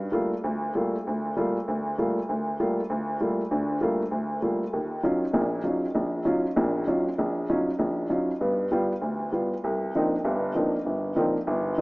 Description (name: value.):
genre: jazz.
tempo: 196 BPM.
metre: 4/4.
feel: swing 62% on 8ths.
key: unclear.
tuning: A4 = 439 Hz.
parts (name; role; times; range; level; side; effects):
warm upright piano; solo; 0.0-11.8 s; G1 to F4; -24 LUFS; equal; none.
room: wet lush hall reverb, RT60 2.5 s.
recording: rough home demo mix, small speaker sound.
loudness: -24 LUFS.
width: side -25 dB against mid.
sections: 0.0-9.6 A section; 9.6-11.8 B section.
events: none.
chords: 0.0 Gm9; 4.7 Ebm9; 8.4 G7; 9.6 Cm11.